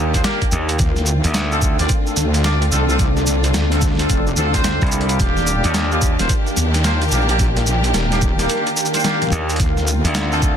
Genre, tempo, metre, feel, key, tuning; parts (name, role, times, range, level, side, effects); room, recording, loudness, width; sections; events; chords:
glitch hop; 109 BPM; 4/4; swing 63% on 16ths; D phrygian; A4 = 441 Hz
rich studio string section; sustained chords; 0.0-10.6 s; D3 to G4; -27 LUFS; left 1 dB; sidechain pumping
gritty slap bass; bass; 0.0-10.6 s; C2 to Eb2; -20 LUFS; equal; overdrive
deep dark ambient pad; texture; 0.0-10.6 s; Eb3 to G5; -24 LUFS; equal; chorus, built-in reverb, sidechain pumping
warm horn section; stabs; 0.1-10.5 s; Bb3 to D5; -24 LUFS; equal; sidechain pumping, digital delay
boom bap sampler-style drum kit; drums; 0.1-10.6 s; hi-hat, shaker, snare drum, toms; -22 LUFS; equal; overdrive
electronic kick drum; drums; 0.1-10.6 s; -19 LUFS; equal; overdrive
wobble bass; bass; 0.8-10.0 s; Eb1 to Eb2; -18 LUFS; equal; chorus, tube saturation
digital ambience; dense, heavily limited modern master; -15 LUFS; side -8 dB against mid
0.0-10.6 A section
kick drops out 8.5-9.6; drum fill 9.0-9.6
0.0 Ebmaj7; 0.8 Dm7; 5.2 Ebmaj7; 9.6 Dm7